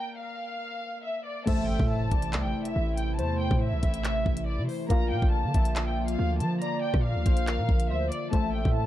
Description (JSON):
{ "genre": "hip hop, drill", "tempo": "140 BPM", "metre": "4/4", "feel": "half-time", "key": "A phrygian", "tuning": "A4 = 440 Hz", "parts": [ { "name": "warm studio violin section", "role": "melody", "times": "0.0-8.9 s", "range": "C5 to Bb5", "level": "-34 LUFS", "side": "left 2 dB", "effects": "low-pass filter, ping-pong delay" }, { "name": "soft electric-piano-like synth keys", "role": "accompaniment", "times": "0.0-8.9 s", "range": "A3 to F5", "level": "-36 LUFS", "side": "left 2 dB", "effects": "chorus, low-pass filter" }, { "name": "warm velvety synth lead", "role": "second line", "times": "1.5-8.9 s", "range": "Bb4 to F5", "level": "-36 LUFS", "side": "right 1 dB", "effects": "chorus, ping-pong delay" }, { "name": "hollow soft pad", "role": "sustained chords", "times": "1.5-8.9 s", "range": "C3 to F4", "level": "-34 LUFS", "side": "equal", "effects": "chorus" }, { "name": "hard-hitting 808-style bass", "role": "bass", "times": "1.5-8.9 s", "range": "A1 to F3", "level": "-29 LUFS", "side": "equal", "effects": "none" }, { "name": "drill drum kit", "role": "drums", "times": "1.5-8.8 s", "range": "crash cymbal, handclaps, hi-hat, kick drum, rim click", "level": "-26 LUFS", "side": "equal", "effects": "none" }, { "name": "impact", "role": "sound effects", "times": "1.6-3.2 s", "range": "none", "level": "-39 LUFS", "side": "right 1 dB", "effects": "none" } ], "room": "little or no reverb", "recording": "dark, warm production", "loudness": "-25 LUFS", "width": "side -13 dB against mid", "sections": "0.0-1.5 A section; 1.5-8.9 B section", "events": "break 0.0-1.5; impact 1.5-3.2", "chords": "0.0 Bb; 1.5 Am; 4.9 Bb; 8.3 Am", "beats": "0.19 0.62 1.04 | 1.47 1.90 2.33 2.76 | 3.19 3.62 4.04 4.47 | 4.90 5.33 5.76 6.19 | 6.62 7.04 7.47 7.90 | 8.33 8.76" }